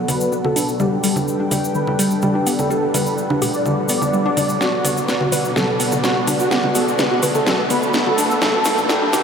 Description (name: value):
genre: melodic techno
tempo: 126 BPM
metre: 4/4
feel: straight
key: B minor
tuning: A4 = 438 Hz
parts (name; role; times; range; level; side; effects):
- dark analog pad; sustained chords; 0.0-9.2 s; B2 to G5; -23 LUFS; left 1 dB; chorus
- filtered dub chord stab; stabs; 0.0-9.2 s; B2 to G4; -33 LUFS; equal; none
- riser; sound effects; 0.0-9.2 s; none; -28 LUFS; right 2 dB; none
- wide unison lead; melody; 0.1-8.8 s; F#4 to D5; -22 LUFS; equal; ensemble chorus, ping-pong delay
- woody wave-folded pluck; arpeggios; 0.1-9.2 s; D3 to B4; -22 LUFS; left 1 dB; chorus, ping-pong delay
- house drum kit; drums; 0.1-9.2 s; congas, hi-hat, snare drum; -22 LUFS; right 1 dB; none
- cabasa; percussion; 0.1-9.2 s; none; -28 LUFS; left 3 dB; none
room: wet huge ambient reverb, RT60 7.5 s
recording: dreamy mix soaked in reverb, high-pass filter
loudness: -16 LUFS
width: side -6 dB against mid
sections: 0.0-9.2 A section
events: build-up 0.0-9.2; riser 0.0-9.2; filter sweep on analog synth lead 0.0-9.2; drum fill 4.6-9.2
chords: 0.0 Bm; 0.8 Gadd9; 4.6 Bm; 8.4 Gadd9